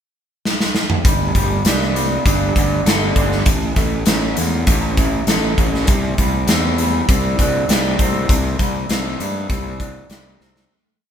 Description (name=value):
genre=quiet-loud alternative rock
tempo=99 BPM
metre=4/4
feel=straight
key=unclear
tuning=A4 = 441 Hz
part: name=big rock drum kit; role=drums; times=0.5-10.7 s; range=hi-hat, kick drum, snare drum, toms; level=-17 LUFS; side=equal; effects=none
part: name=electric guitar through a small old amp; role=arpeggios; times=1.1-10.7 s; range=A2 to A4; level=-22 LUFS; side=equal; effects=none
part: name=fuzz fingered electric bass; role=bass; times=1.1-10.7 s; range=G1 to G2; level=-20 LUFS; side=equal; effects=overdrive
room=light reverb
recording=band playing live in one room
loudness=-15 LUFS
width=side -8 dB against mid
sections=0.0-1.0 pickup bar; 1.0-10.7 verse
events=drum fill 0.4-1.0, 10.4-10.7; fade-out 8.3-10.7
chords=0.0 N.C.; 1.0 Gadd9; 3.5 A; 5.9 Csus2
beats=0.44 | 1.04 1.65 2.25 2.86 | 3.46 4.07 4.67 5.27 | 5.88 6.48 7.08 7.69 | 8.29 8.89 9.49 10.09